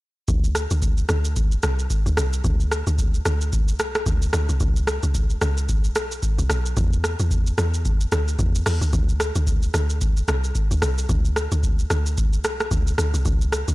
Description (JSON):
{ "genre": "amapiano", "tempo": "111 BPM", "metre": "4/4", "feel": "swing 58% on 16ths", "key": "unclear", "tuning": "A4 = 438 Hz", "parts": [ { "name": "deep log drum bass", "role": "bass", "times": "0.3-13.7 s", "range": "B1 to E2", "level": "-22 LUFS", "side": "equal", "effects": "none" }, { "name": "booming analog drum machine", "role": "drums", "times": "0.3-13.7 s", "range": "hi-hat, kick drum, rim click, shaker", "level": "-22 LUFS", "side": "equal", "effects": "none" } ], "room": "little or no reverb", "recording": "blown-out, overdriven recording, overdrive", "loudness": "-19 LUFS", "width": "side -20 dB against mid", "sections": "0.3-13.7 A section", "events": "drop 0.3-13.7", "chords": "none", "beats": "| 0.28 0.82 1.36 1.90 | 2.44 2.98 3.53 4.07 | 4.61 5.15 5.69 6.23 | 6.77 7.31 7.85 8.39 | 8.93 9.47 10.01 10.55 | 11.09 11.63 12.17 12.71 | 13.26" }